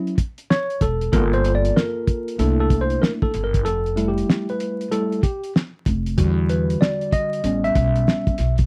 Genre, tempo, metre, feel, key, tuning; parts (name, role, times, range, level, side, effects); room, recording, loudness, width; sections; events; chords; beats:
hip hop, jazz-hop; 95 BPM; 4/4; swing 64% on 16ths; A4 = 440 Hz
tine electric piano; accompaniment; 0.0-8.6 s; D3 to E5; -24 LUFS; equal; overdrive
cloth-damped thuddy drum kit; drums; 0.1-8.7 s; hi-hat, kick drum, snare drum; -22 LUFS; equal
upright bass; bass; 0.8-8.7 s; E1 to E2; -24 LUFS; equal
little or no reverb; dry, close 1970s-style studio recording, vinyl crackle; -21 LUFS; mono
0.0-8.7 A section
tine electric piano solo 0.0-8.7; break 3.7-4.9
0.0 Dmaj7 (rootless); 1.1 Gm9; 2.4 C13; 3.7 Fmaj9; 6.2 Em9; 7.4 A9
0.50 | 1.13 1.76 2.39 3.02 | 3.65 4.29 4.92 5.55 | 6.18 6.81 7.44 8.07